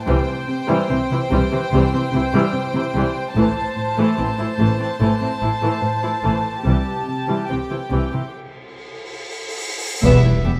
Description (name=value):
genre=cinematic, suspense film score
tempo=73 BPM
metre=4/4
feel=straight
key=unclear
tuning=A4 = 440 Hz
part: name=warm studio violin section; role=second line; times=0.0-10.5 s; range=B3 to A5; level=-27 LUFS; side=equal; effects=none
part: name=dark studio viola section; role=accompaniment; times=0.1-10.5 s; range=E3 to E4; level=-25 LUFS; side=equal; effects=none
part: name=warm studio cello section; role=riff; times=0.1-10.6 s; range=E2 to C4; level=-28 LUFS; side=equal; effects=none
part: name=dark studio cello section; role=bass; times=0.1-10.5 s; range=E2 to C3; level=-26 LUFS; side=equal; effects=none
part: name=dark studio double bass section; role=bass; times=0.1-10.5 s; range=E1 to C2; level=-23 LUFS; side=equal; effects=none
part: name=taiko ensemble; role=drums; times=3.4-5.0, 10.0-10.6 s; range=none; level=-30 LUFS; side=equal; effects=none
part: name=cymbal swell and impact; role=sound effects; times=8.4-10.6 s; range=none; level=-30 LUFS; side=equal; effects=none
part: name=clear studio violin section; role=melody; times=10.0-10.6 s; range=E5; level=-29 LUFS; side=equal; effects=none
part: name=mellow French horn section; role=sustained chords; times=10.0-10.4 s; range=G3 to B4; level=-25 LUFS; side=equal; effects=none
room=light reverb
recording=close, detailed microphones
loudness=-20 LUFS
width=mono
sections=0.0-10.0 A section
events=break 8.3-10.0; cymbal swell 8.4-10.0; band accent 10.0-10.6; impact 10.0-10.6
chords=0.1 C; 3.4 Am; 6.7 C; 8.3 N.C.; 10.0 Em